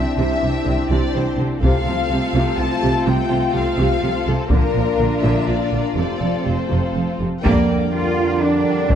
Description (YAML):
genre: cinematic, epic orchestral film score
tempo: 125 BPM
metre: 3/4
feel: straight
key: F major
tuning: A4 = 439 Hz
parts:
  - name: rich studio violin section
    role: melody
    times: 0.0-9.0 s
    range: A4 to A5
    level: -25 LUFS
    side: left 5 dB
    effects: none
  - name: rich symphonic violin section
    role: second line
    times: 0.0-9.0 s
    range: D4 to Eb5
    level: -27 LUFS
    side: left 4 dB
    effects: none
  - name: rich symphonic viola section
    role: accompaniment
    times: 0.0-9.0 s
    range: C3 to Bb4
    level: -26 LUFS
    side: right 2 dB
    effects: none
  - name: warm French horn section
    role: sustained chords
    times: 0.0-9.0 s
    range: A3 to Bb4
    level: -25 LUFS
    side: left 3 dB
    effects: none
  - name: rich studio double bass section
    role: bass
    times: 0.0-9.0 s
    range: F1 to F2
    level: -22 LUFS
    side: right 2 dB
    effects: none
  - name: rich symphonic cello section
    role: bass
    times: 0.0-9.0 s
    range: F2 to F4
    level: -23 LUFS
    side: right 2 dB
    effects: none
  - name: taiko ensemble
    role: drums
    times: 1.6-9.0 s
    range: none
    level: -20 LUFS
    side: left 1 dB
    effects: none
  - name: warm trombone section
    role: sustained chords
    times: 7.4-9.0 s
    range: D3 to G3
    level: -25 LUFS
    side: right 3 dB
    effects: none
room: moderate scoring stage reverb, RT60 1.9 s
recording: dark, warm production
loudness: -16 LUFS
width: side -9 dB against mid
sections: 0.0-7.5 A section; 7.5-9.0 B section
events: band accent 7.5-7.9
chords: 0.0 Cadd9; 1.6 F/C; 4.5 Bb; 6.0 F; 7.5 Gm7/F